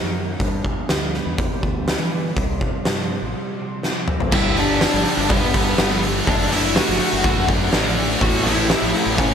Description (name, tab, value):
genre	quiet-loud alternative rock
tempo	123 BPM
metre	4/4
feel	straight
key	G major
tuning	A4 = 440 Hz
part	twelve-string electric guitar	arpeggios	0.0-4.3 s	G2 to C4	-30 LUFS	right 1 dB	analog chorus, analog delay
part	growling fingered electric bass	bass	0.0-9.3 s	F#1 to E3	-26 LUFS	equal	overdrive
part	oversized low-tuned drum kit	drums	0.4-9.3 s	crash cymbal, hi-hat, kick drum, snare drum, toms	-20 LUFS	equal	none
part	octave-fuzz lead guitar	melody	4.3-9.3 s	B3 to F#5	-22 LUFS	left 2 dB	distortion
part	crunchy overdriven guitar	riff	4.3-9.3 s	G2 to D4	-26 LUFS	right 8 dB	none
part	heavy high-gain guitar	riff	4.3-9.3 s	G2 to D4	-26 LUFS	left 1 dB	distortion
part	overdriven semi-hollow guitar	riff	4.3-9.3 s	G2 to D4	-25 LUFS	left 10 dB	slapback echo
room	moderate lush hall reverb, RT60 1.6 s, small room ambience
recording	big arena sound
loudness	-17 LUFS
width	side -7 dB against mid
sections	0.0-4.3 A section; 4.3-9.3 B section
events	drum fill 3.8-4.3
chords	0.4 G; 2.4 C5; 4.3 G; 6.3 Dadd9/F#; 8.2 A